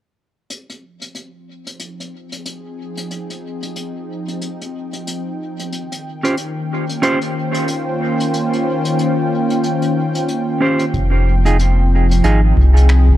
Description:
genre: ambient dub.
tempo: 92 BPM.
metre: 4/4.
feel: swing 59% on 16ths.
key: F minor.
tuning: A4 = 440 Hz.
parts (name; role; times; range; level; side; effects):
warm analog pad; sustained chords; 1.4-13.2 s; Eb3 to G5; -20 LUFS; equal; chorus.
vintage brush drum kit; drums; 0.5-13.1 s; finger snaps, hi-hat; -30 LUFS; left 2 dB; dub echo.
clean electric guitar; stabs; 6.2-12.4 s; Db4 to C5; -20 LUFS; right 2 dB; dub echo.
warm sub bass; bass; 10.9-13.2 s; F1 to C2; -11 LUFS; equal; none.
electronic kick drum; drums; 10.9-13.2 s; none; -21 LUFS; equal; none.
room: studio ambience.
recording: echo-heavy mix.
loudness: -15 LUFS.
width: side -13 dB against mid.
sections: 0.5-10.9 A section; 10.9-13.2 B section.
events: fade-in on analog synth pad 0.5-10.9.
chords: 0.5 Fm7; 5.7 Eb13; 10.9 Fm7.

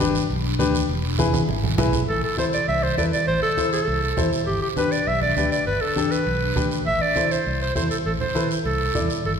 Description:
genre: latin, cumbia.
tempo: 201 BPM.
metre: 4/4.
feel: straight.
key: A minor.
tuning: A4 = 441 Hz.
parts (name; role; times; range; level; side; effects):
clear upright piano; accompaniment; 0.0-9.2 s; D4 to D5; -26 LUFS; left 3 dB; none.
fingered electric bass; bass; 0.0-9.4 s; E1 to E2; -27 LUFS; equal; none.
congas; percussion; 0.0-9.1 s; none; -27 LUFS; right 1 dB; none.
guiro; percussion; 0.0-9.4 s; none; -33 LUFS; right 5 dB; none.
clear clarinet; melody; 2.1-9.3 s; G4 to E5; -23 LUFS; right 1 dB; none.
room: wet scoring stage reverb, RT60 1.9 s.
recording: recorded in a church or concert hall.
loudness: -20 LUFS.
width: side -7 dB against mid.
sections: 0.0-2.1 A section; 2.1-9.4 B section.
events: drum fill 1.2-2.1.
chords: 0.0 G; 0.9 E; 2.1 Am; 4.5 G; 6.9 Am.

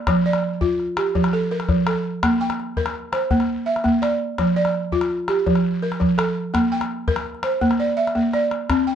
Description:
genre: west african traditional, West African string and xylophone music.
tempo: 111 BPM (dotted quarters).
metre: 12/8.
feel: straight.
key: unclear.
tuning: A4 = 444 Hz.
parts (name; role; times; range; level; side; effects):
balafon; arpeggios; 0.0-8.9 s; F3 to G5; -19 LUFS; right 1 dB; none.
calabash; percussion; 0.1-8.9 s; none; -26 LUFS; left 3 dB; none.
room: light reverb.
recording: dark, warm production, nothing above 10.4 kHz.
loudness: -18 LUFS.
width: side -8 dB against mid.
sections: 0.0-8.7 A section.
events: drum fill 8.2-8.7.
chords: 0.1 F; 2.2 Bb; 4.4 F; 6.5 Bb.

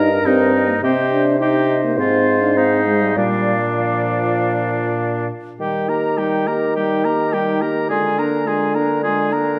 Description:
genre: quick classical-period movement for wind quintet.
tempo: 102 BPM.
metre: 4/4.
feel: uneven beats, rubato.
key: Eb major.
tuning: A4 = 440 Hz.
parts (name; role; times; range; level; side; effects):
mellow concert flute; melody; 0.0-9.6 s; Eb5 to Bb5; -28 LUFS; equal; none.
warm oboe; second line; 0.0-9.6 s; D4 to Bb4; -25 LUFS; equal; none.
clear clarinet; accompaniment; 0.0-9.6 s; D4 to D5; -27 LUFS; equal; none.
warm French horn; accompaniment; 0.0-9.6 s; F3 to Eb4; -24 LUFS; equal; none.
dark bassoon; bass; 0.0-9.6 s; G2 to Eb3; -22 LUFS; equal; none.
room: wet recital hall reverb, RT60 1.7 s.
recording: none.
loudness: -18 LUFS.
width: mono.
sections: 0.0-5.6 A section; 5.6-9.6 B section.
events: none.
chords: 0.0 Eb/G; 0.8 Cm; 2.0 Fm/Ab; 3.2 Bb; 5.6 Eb; 7.9 Bb7/D.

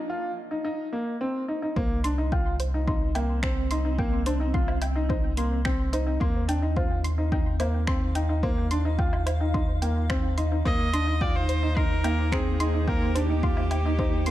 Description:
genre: piano and strings electronica.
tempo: 108 BPM.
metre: 4/4.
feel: straight.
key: C minor.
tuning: A4 = 442 Hz.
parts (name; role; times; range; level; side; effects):
clear upright piano; riff; 0.0-14.3 s; Bb3 to F4; -30 LUFS; equal; tape echo.
soft round pluck; arpeggios; 1.8-14.3 s; C5 to C6; -36 LUFS; equal; chorus, sidechain pumping, tape echo.
warm sub bass; bass; 1.8-14.3 s; C2 to Eb2; -26 LUFS; equal; sidechain pumping, high-pass filter.
electronic kick drum; drums; 1.8-14.1 s; none; -28 LUFS; equal; overdrive, studio reverb.
granular cloud pad; sustained chords; 2.7-14.3 s; Bb3 to G5; -35 LUFS; right 1 dB; built-in reverb, sidechain pumping.
deep house drum kit; drums; 2.0-14.3 s; finger snaps, hi-hat, woodblock; -36 LUFS; equal; overdrive, studio reverb.
clear viola; melody; 10.7-14.3 s; G4 to Eb5; -31 LUFS; equal; none.
room: light reverb.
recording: dark, warm production.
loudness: -23 LUFS.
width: side -14 dB against mid.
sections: 0.0-1.8 A section; 1.8-14.3 B section.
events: break 0.0-1.8; build-up 0.0-1.8; drop 1.8-14.3.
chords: 0.0 Ebsus2; 1.8 Cm7; 6.2 Ebadd9.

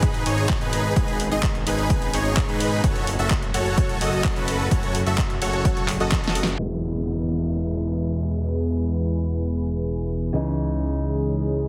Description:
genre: EDM, festival progressive house.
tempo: 128 BPM.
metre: 4/4.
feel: straight.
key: E major.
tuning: A4 = 439 Hz.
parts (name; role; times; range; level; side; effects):
lush unison pad; sustained chords; 0.0-11.7 s; A2 to B4; -32 LUFS; equal; chorus, sidechain pumping.
dense compressed supersaw; riff; 0.0-6.4 s; D#4 to E5; -28 LUFS; equal; sidechain pumping, low-pass filter, tape echo.
fat analog bass; bass; 0.0-11.7 s; E1 to G#2; -29 LUFS; equal; sidechain pumping.
electronic kick drum; drums; 0.0-6.2 s; none; -26 LUFS; equal; overdrive.
pop drum kit; drums; 0.0-6.7 s; crash cymbal, handclaps, hi-hat, snare drum; -32 LUFS; equal; none.
picked steel-string acoustic guitar; accompaniment; 6.6-11.7 s; B2 to E4; -30 LUFS; equal; sidechain pumping, tape echo.
downlifter; sound effects; 6.6-10.3 s; none; -40 LUFS; equal; none.
room: moderate lush hall reverb, RT60 1.9 s.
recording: heavily compressed radio sound, multiband compression, low-pass filter.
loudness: -23 LUFS.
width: mono.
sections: 0.0-6.6 A section; 6.6-11.7 B section.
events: drop 0.0-6.6; drum fill 6.1-6.6; band accent 6.4; filter sweep on analog synth pad 6.6-11.7; filter sweep 6.6-11.7.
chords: 0.0 G#m; 2.8 F#m; 6.6 E; 10.3 C#madd9.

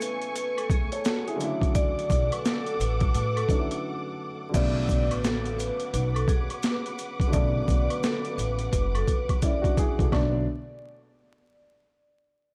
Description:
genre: hip hop, boom-bap hip-hop.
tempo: 86 BPM.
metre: 4/4.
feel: swing 62% on 16ths.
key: B dorian.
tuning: A4 = 440 Hz.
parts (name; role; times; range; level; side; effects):
vibraphone with medium hard mallets; melody; 0.0-10.4 s; G#4 to D5; -34 LUFS; equal; high-pass filter, low-pass filter, tape echo.
dark upright piano; accompaniment; 0.0-10.4 s; C#3 to C#5; -35 LUFS; equal; high-pass filter, low-pass filter.
warm studio string section; sustained chords; 0.0-10.4 s; B2 to D6; -39 LUFS; equal; high-pass filter, low-pass filter.
boom bap sampler-style drum kit; drums; 0.0-10.3 s; crash cymbal, hi-hat, kick drum, snare drum; -29 LUFS; equal; overdrive, vintage 12-bit sampler grit.
maracas and woodblock; percussion; 0.0-10.4 s; none; -42 LUFS; equal; none.
upright bass; bass; 2.1-10.4 s; F#1 to A2; -31 LUFS; equal; none.
room: studio ambience.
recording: vinyl crackle.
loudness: -26 LUFS.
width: mono.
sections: 0.0-4.5 A section; 4.5-10.1 B section; 10.1-12.5 C section.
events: break 0.0-1.8, 3.8-4.5; drum fill 8.7-10.1.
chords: 0.0 Amaj7; 1.4 Dmaj7; 4.5 Bm7.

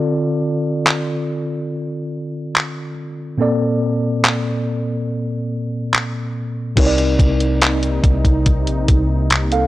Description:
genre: contemporary R&B.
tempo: 71 BPM.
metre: 4/4.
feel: straight.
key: C dorian.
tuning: A4 = 445 Hz.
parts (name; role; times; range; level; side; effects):
mellow tine electric piano; accompaniment; 0.0-9.7 s; Bb2 to F5; -20 LUFS; equal; medium stereo tremolo, low-pass filter.
clean 12-bit digital drum machine; drums; 0.9-9.7 s; crash cymbal, handclaps, hi-hat, kick drum; -16 LUFS; equal; vintage 12-bit sampler grit.
warm analog pad; sustained chords; 6.8-9.7 s; C3 to Eb4; -24 LUFS; equal; chorus, sidechain pumping.
warm 808-style bass; bass; 6.8-9.7 s; Bb1 to C2; -20 LUFS; equal; none.
room: little or no reverb.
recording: dry, gritty hardware recording, cassette tape.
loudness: -16 LUFS.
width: side -16 dB against mid.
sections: 0.0-6.8 A section; 6.8-9.7 B section.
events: filter sweep on tine electric piano 0.0-6.8.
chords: 0.0 Dm7; 3.4 Bbmaj9; 6.8 Cm7.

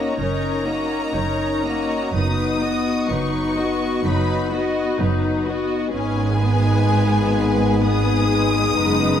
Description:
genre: cinematic, emotional film score for orchestra.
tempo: 63 BPM.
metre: 4/4.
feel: rubato.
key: G# minor.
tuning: A4 = 440 Hz.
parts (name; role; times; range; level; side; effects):
rich studio violin section; melody; 0.0-9.2 s; G#5 to D#6; -27 LUFS; left 3 dB; none.
clear studio violin section; second line; 0.0-9.2 s; D#4 to D#5; -27 LUFS; left 1 dB; none.
rich studio viola section; accompaniment; 0.0-9.2 s; F#3 to F#4; -25 LUFS; equal; none.
mellow French horn section; sustained chords; 0.0-9.2 s; B3 to D#4; -23 LUFS; left 6 dB; none.
rich studio cello section; bass; 0.0-9.2 s; F#2 to G#2; -24 LUFS; right 2 dB; none.
rich studio double bass section; bass; 0.0-9.2 s; F#1 to G#1; -24 LUFS; right 3 dB; none.
room: moderate scoring stage reverb, RT60 1.5 s.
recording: none.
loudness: -18 LUFS.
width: side -9 dB against mid.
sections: 0.0-9.2 A section.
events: none.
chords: 0.0 F#6; 2.2 B/F#; 5.9 G#m.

